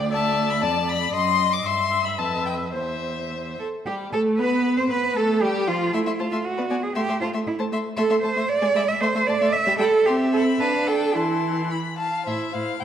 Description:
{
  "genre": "quick classical-period movement for string quartet",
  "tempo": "106-118 BPM",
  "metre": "2/4",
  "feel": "rubato",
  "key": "C major, A minor from 8.0 s",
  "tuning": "A4 = 440 Hz",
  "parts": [
    { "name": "rich violin", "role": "second line", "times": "0.0-12.8 s", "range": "F4 to B5", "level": "-30 LUFS", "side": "left 3 dB", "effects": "none" },
    { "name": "warm viola", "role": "accompaniment", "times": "0.0-12.8 s", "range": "E3 to E5", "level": "-26 LUFS", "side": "right 1 dB", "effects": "none" },
    { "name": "rich cello", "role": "bass", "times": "0.0-12.8 s", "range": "D2 to E5", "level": "-24 LUFS", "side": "right 3 dB", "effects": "none" },
    { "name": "rich violin", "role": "melody", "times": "0.1-12.8 s", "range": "F4 to D6", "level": "-28 LUFS", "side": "left 8 dB", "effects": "none" }
  ],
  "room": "wet scoring stage reverb, RT60 1.9 s",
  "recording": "none",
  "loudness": "-20 LUFS",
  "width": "side -9 dB against mid",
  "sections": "0.0-3.9 A section; 3.9-12.3 A section",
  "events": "none",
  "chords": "0.0 Dsus2; 0.6 Dm/F; 1.1 D7b9/F#; 1.7 C/G; 2.2 G7/F (rootless); 2.7 C/E; 3.9 Gsus2; 4.4 N.C.; 4.9 G9; 5.9 Am; 6.4 G#m/B; 7.0 Am; 8.5 E7; 9.0 Am; 9.5 N.C.; 10.1 C; 10.6 Dm; 11.2 Am/E; 12.3 Am"
}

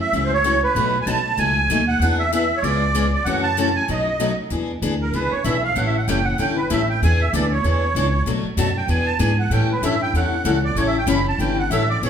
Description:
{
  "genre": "acoustic string swing (jazz manouche)",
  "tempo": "192 BPM",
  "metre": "4/4",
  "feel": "swing 60% on 8ths",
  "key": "E mixolydian",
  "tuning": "A4 = 442 Hz",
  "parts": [
    { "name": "musette accordion", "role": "melody", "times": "0.0-12.1 s", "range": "A#4 to B5", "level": "-21 LUFS", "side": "right 3 dB", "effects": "none" },
    { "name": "picked steel-string acoustic guitar", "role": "accompaniment", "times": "0.1-12.1 s", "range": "B2 to A4", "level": "-23 LUFS", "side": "left 4 dB", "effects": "none" },
    { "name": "upright bass", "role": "bass", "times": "0.1-12.1 s", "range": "F#1 to A2", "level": "-22 LUFS", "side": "equal", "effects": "none" }
  ],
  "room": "wet large studio reverb, RT60 1.4 s",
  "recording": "band playing live in one room",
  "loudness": "-17 LUFS",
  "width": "side -8 dB against mid",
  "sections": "0.0-4.5 A section; 4.5-12.1 B section",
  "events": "accordion solo 4.5-12.1",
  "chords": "0.0 F#m7; 0.8 B7; 2.0 E7; 2.6 C#7b9; 3.3 F#m7; 3.9 B7; 4.5 E7; 5.8 A7; 7.0 E7; 8.3 Bm7; 8.9 E7; 9.5 A7"
}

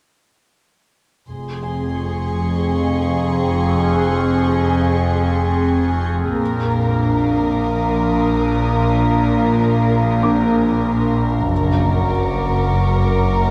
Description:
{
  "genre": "cinematic",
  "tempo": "free time",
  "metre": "none",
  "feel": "none",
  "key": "unclear",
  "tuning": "A4 = 438 Hz",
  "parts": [
    { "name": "dark studio violin section", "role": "melody", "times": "1.3-13.5 s", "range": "Ab4 to Bb4", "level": "-27 LUFS", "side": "equal", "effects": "none" },
    { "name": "warbly tape-like pad", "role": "sustained chords", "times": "1.3-13.5 s", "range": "C4 to Ab5", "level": "-24 LUFS", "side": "equal", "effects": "chorus, built-in reverb" },
    { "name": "dark symphonic double bass section", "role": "bass", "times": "1.3-13.5 s", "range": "F1 to Bb1", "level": "-24 LUFS", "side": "equal", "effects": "none" },
    { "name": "warm symphonic cello section", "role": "bass", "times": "1.3-13.5 s", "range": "F2 to Bb2", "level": "-24 LUFS", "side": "equal", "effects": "none" },
    { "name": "overtone-sweeping drone", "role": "drone", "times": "2.1-13.5 s", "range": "Gb1 to F2", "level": "-26 LUFS", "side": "equal", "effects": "chorus, built-in reverb" },
    { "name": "warm symphonic violin section", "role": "texture", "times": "1.3-13.5 s", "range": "C6 to Eb6", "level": "-35 LUFS", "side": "equal", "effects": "none" },
    { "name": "felt-muted upright piano", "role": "texture", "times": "1.6-13.5 s", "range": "D4 to D6", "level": "-33 LUFS", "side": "equal", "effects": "none" }
  ],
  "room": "moderate scoring stage reverb, RT60 1.6 s",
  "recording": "none",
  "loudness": "-18 LUFS",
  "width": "mono",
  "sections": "1.3-13.5 A section",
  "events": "none",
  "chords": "1.3 Fm; 6.4 Bb; 11.5 Gb"
}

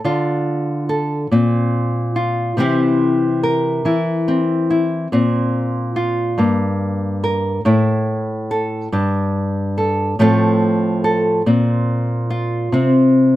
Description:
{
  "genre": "folk",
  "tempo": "47 BPM (dotted quarters)",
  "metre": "6/8",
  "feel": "straight",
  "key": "unclear",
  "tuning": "A4 = 440 Hz",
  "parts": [
    { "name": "nylon-string guitar", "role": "solo", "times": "0.0-13.4 s", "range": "G2 to Bb4", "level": "-15 LUFS", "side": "equal", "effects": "none" }
  ],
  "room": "light reverb",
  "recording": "none",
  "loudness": "-15 LUFS",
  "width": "side -15 dB against mid",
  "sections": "0.0-13.4 A section",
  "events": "none",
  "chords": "0.0 Dm; 1.3 Bbsus2; 2.6 C; 5.1 Bbsus2; 6.4 Gm; 7.7 A5; 8.9 Gsus2; 10.2 F/A; 11.5 Bbsus2; 12.7 Csus4"
}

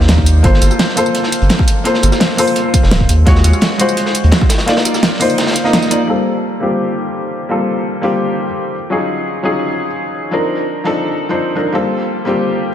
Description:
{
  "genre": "liquid drum and bass",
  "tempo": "170 BPM",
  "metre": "4/4",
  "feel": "straight",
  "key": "G minor",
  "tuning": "A4 = 440 Hz",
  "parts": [
    { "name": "felt-muted upright piano", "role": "accompaniment", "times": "0.0-12.7 s", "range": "F3 to Eb5", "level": "-15 LUFS", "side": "left 1 dB", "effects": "low-pass filter, diffuse ambient delay" },
    { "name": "saturated sub bass", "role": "bass", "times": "0.0-4.3 s", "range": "D1 to Eb2", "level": "-10 LUFS", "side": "equal", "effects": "tube saturation" },
    { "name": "crunchy breakbeat drum kit", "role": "drums", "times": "0.0-6.0 s", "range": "hi-hat, snare drum", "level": "-22 LUFS", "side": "equal", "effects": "high-pass filter on hats, high-pass filter on snare, high-pass filter on room" },
    { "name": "pop drum kit", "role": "drums", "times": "0.1-8.1, 10.9 s", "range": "hi-hat, rim click, snare drum, tambourine", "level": "-18 LUFS", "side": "right 1 dB", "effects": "overdrive, low-pass filter on hats, low-pass filter on perc, low-pass filter on snare, low-pass filter on room" },
    { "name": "electronic kick drum", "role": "drums", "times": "0.2-4.5 s", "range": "none", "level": "-13 LUFS", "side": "equal", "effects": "overdrive" }
  ],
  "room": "moderate plate reverb, RT60 2.0 s",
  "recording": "dreamy mix soaked in reverb",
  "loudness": "-12 LUFS",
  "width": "side -10 dB against mid",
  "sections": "0.0-6.1 A section; 6.1-12.7 B section",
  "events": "drop 0.0-6.1; filter sweep on felt piano 6.1-12.7",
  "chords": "0.4 Gm11; 3.1 Ebm11; 4.7 Cm11; 6.1 Gm11; 8.7 Ebm11; 10.3 Cm11; 11.7 Gm11"
}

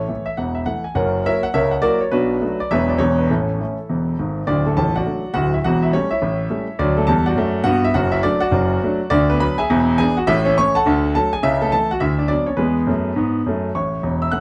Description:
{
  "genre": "jazz, stride piano",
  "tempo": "207 BPM",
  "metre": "4/4",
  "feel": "swing 63% on 8ths",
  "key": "A major, D major from 4.5 s, A major from 9.1 s",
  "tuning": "A4 = 440 Hz",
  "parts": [
    { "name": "warm grand piano", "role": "solo", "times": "0.0-14.4 s", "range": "A0 to F#6", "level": "-19 LUFS", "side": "equal", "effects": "none" }
  ],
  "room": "moderate studio reverb, RT60 0.8 s",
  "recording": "heard from further back in the room",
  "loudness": "-19 LUFS",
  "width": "mono",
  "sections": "0.0-4.5 A section; 4.5-13.8 B section",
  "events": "none",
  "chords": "0.0 A; 1.0 F#7; 2.1 Bm7; 2.7 E13; 3.0 E7; 3.3 A; 4.5 D; 5.6 A7/E; 6.8 D; 8.0 D/F#; 9.1 Bm/D; 9.7 E7; 10.3 A; 10.9 D; 11.4 A/C#; 12.0 Bm/D; 12.6 E; 13.8 A"
}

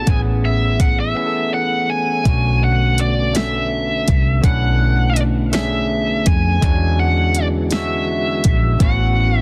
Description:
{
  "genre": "slow six-eight R&B",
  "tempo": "55 BPM (dotted quarters)",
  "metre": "6/8",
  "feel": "straight",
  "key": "B dorian",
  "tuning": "A4 = 439 Hz",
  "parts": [
    { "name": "biting lead guitar", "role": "melody", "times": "0.0-9.4 s", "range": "D5 to G#5", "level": "-24 LUFS", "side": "equal", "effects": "overdrive" },
    { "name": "overdriven tine electric piano", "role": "accompaniment", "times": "0.0-9.4 s", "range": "G#3 to A4", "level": "-25 LUFS", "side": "equal", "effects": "none" },
    { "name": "tonewheel organ", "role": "sustained chords", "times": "0.0-9.4 s", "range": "D3 to G#4", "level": "-31 LUFS", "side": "equal", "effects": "chorus vibrato, slow rotary speaker" },
    { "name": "vintage muted fingered electric bass", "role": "bass", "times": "0.0-9.4 s", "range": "A1 to E#2", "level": "-21 LUFS", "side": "equal", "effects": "none" },
    { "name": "smooth R&B drum kit", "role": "drums", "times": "0.1-9.0 s", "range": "hi-hat, kick drum, snare drum", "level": "-20 LUFS", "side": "equal", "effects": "none" }
  ],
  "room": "little or no reverb",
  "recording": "dense, heavily limited modern master",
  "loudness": "-17 LUFS",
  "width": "mono",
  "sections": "0.0-2.3 A section; 2.3-9.4 B section",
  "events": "lead electric guitar solo 0.0-2.3; break 1.2-2.3",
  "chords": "0.1 Amaj7; 2.3 Bm9; 6.6 E13; 8.8 A69"
}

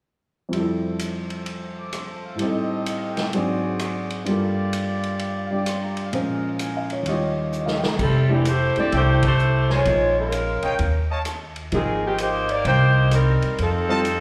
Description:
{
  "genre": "jazz, big band swing",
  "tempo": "129 BPM",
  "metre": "4/4",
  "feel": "swing 66% on 8ths",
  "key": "F major",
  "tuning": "A4 = 440 Hz",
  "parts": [
    { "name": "warm baby grand piano", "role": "accompaniment", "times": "0.5-14.0 s", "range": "Eb2 to Bb5", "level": "-28 LUFS", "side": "equal", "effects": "none" },
    { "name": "warm trumpet section", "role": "stabs", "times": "0.5-14.0 s", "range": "F4 to D6", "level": "-33 LUFS", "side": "equal", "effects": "slapback echo" },
    { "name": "swinging big-band drum kit", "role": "drums", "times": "0.5-14.2 s", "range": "crash cymbal, hi-hat, kick drum, ride cymbal, rim click, snare drum", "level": "-34 LUFS", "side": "equal", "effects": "none" },
    { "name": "warm saxophone section", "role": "melody", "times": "8.0-14.2 s", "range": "Eb3 to D5", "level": "-24 LUFS", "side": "equal", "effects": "none" },
    { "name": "upright bass", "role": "bass", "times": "8.0-14.2 s", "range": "F1 to F2", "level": "-24 LUFS", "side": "equal", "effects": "none" }
  ],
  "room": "moderate digital room reverb, RT60 1.2 s, small room ambience",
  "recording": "live gig heard through the venue's PA, club reverb",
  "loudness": "-22 LUFS",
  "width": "mono",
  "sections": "0.5-8.0 A section; 8.0-14.2 B section",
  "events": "drum fill 7.5-8.0; band accent 9.2",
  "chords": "0.5 Fmaj7; 2.4 Am7b5; 3.3 Ab7#11; 4.3 Gm7; 6.1 Bbm7; 7.1 Eb9; 8.0 Fmaj13; 9.9 Bbm9; 10.8 Ebsus2; 11.7 Abmaj13; 13.6 F7"
}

